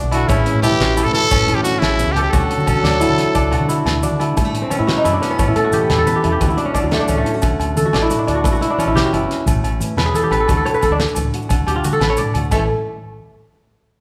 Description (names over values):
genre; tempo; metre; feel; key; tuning
highlife guitar band; 118 BPM (dotted quarters); 12/8; straight; A mixolydian; A4 = 439 Hz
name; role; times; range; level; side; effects
fingerpicked steel-string acoustic guitar; accompaniment; 0.0-12.7 s; E2 to F#4; -28 LUFS; equal; none
kora; arpeggios; 0.0-12.6 s; F#3 to D5; -21 LUFS; equal; none
deep dub fingered electric bass; bass; 0.0-12.7 s; F#1 to D3; -25 LUFS; equal; none
congas; percussion; 0.0-12.7 s; none; -29 LUFS; equal; none
growling trumpet; melody; 0.1-4.0 s; E4 to A4; -21 LUFS; equal; none
breathy trombone; second line; 0.1-4.0 s; C#3 to F#3; -28 LUFS; equal; none
damped 70s drum kit; drums; 0.1-12.6 s; crash cymbal, hi-hat, kick drum, snare drum; -24 LUFS; equal; none
agogo bells; percussion; 0.1-12.6 s; none; -30 LUFS; equal; none
maracas; percussion; 0.3-12.7 s; none; -37 LUFS; equal; none
room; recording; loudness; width
wet large studio reverb, RT60 1.4 s; band playing live in one room; -17 LUFS; mono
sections
0.0-4.4 A section; 4.4-12.5 B section; 12.5-14.0 C section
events
kora solo 4.4-12.5; drum fill 11.8-12.5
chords
0.3 A; 2.3 D; 4.4 A; 6.4 D; 8.4 A; 10.5 D; 12.5 A5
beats
| 0.29 0.80 1.31 1.82 | 2.33 2.84 3.35 3.86 | 4.37 4.88 5.39 5.90 | 6.41 6.92 7.43 7.94 | 8.45 8.96 9.47 9.97 | 10.48 10.99 11.50 12.01 | 12.52